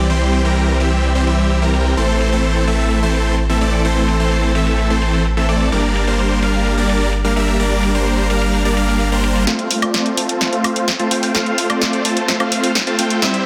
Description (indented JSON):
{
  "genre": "EDM, festival progressive house",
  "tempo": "128 BPM",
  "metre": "4/4",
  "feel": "straight",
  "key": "F major",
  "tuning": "A4 = 440 Hz",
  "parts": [
    { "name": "supersaw chords", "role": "riff", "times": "0.0-13.5 s", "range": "E3 to A5", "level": "-19 LUFS", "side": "equal", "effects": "low-pass filter, digital delay" },
    { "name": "saturated sub bass", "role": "bass", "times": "0.0-9.4 s", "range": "G1 to C2", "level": "-20 LUFS", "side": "equal", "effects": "none" },
    { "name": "house drum kit", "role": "drums", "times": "0.1-13.4 s", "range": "hi-hat, snare drum, woodblock", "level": "-23 LUFS", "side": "equal", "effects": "high-pass filter on hats, low-pass filter on hats, high-pass filter on snare, low-pass filter on snare, high-pass filter on perc, low-pass filter on perc" }
  ],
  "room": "light reverb, digital ambience",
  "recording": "dense, heavily limited modern master, high-pass filter",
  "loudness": "-16 LUFS",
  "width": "mono",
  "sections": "0.0-9.5 A section; 9.5-13.5 B section",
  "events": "build-up 9.5-13.5; drum fill 9.5-13.5; filter sweep on supersaw synth 9.5-13.5",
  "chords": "0.0 C; 2.0 Am; 5.7 Gm; 9.5 F",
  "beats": "| 0.10 0.57 1.03 1.50 | 1.97 2.44 2.91 3.38 | 3.85 4.32 4.79 5.25 | 5.72 6.19 6.66 7.13 | 7.60 8.07 8.54 9.00 | 9.47 9.94 10.41 10.88 | 11.35 11.82 12.29 12.75 | 13.22"
}